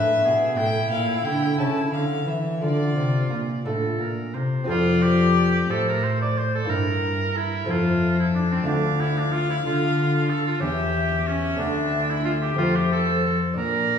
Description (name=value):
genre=classical, baroque-style sonata movement with continuo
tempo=60 BPM (dotted quarters)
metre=6/8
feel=straight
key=D minor, F major from 4.7 s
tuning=A4 = 440 Hz
part: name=warm violin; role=melody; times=0.0-14.0 s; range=A4 to A5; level=-28 LUFS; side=left 4 dB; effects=none
part: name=clear oboe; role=second line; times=0.0-14.0 s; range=C4 to D5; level=-26 LUFS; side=right 2 dB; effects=none
part: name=lute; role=accompaniment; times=0.0-14.0 s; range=D2 to B4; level=-28 LUFS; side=left 1 dB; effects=none
part: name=dark cello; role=bass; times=0.0-14.0 s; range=D2 to E3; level=-24 LUFS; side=left 1 dB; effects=none
room=wet recital hall reverb, RT60 1.7 s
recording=heard from further back in the room, studio reverb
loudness=-20 LUFS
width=side -7 dB against mid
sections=0.0-4.7 A section; 4.7-14.0 A section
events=none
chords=0.0 E7; 0.6 A; 2.6 Dm; 4.7 F; 6.7 Edim/G; 7.7 F; 8.7 Dm; 10.6 C#dim/E; 11.6 D5; 12.6 F